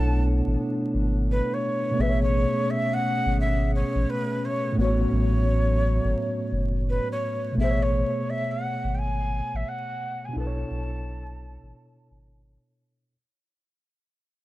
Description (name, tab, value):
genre	lo-fi hip hop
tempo	86 BPM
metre	4/4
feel	swing 63% on 16ths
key	A major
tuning	A4 = 440 Hz
part	breathy mellow jazz flute	melody	0.0-12.4 s	B4 to A5	-29 LUFS	equal	low-pass filter
part	mellow tine electric piano	accompaniment	0.0-13.2 s	A2 to C#5	-28 LUFS	equal	medium stereo tremolo, cassette tape, low-pass filter
part	dark analog pad	sustained chords	0.0-7.5 s	F#3 to G#4	-32 LUFS	right 1 dB	wide subtle chorus
part	warm sub bass	bass	0.0-12.6 s	F#1 to B1	-25 LUFS	equal	none
room	little or no reverb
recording	vinyl crackle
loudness	-23 LUFS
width	side -17 dB against mid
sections	0.0-7.6 A section; 7.6-13.1 B section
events	fade-out 7.6-13.1; filter sweep 7.6-13.1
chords	0.0 Bm11; 2.0 Amaj9; 4.8 A69; 7.6 Amaj9; 10.3 Bm11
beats	0.58 1.27 | 1.97 2.67 3.37 4.07 | 4.76 5.46 6.16 6.86 | 7.55 8.25 8.95 9.65 | 10.34 11.04 11.74 12.44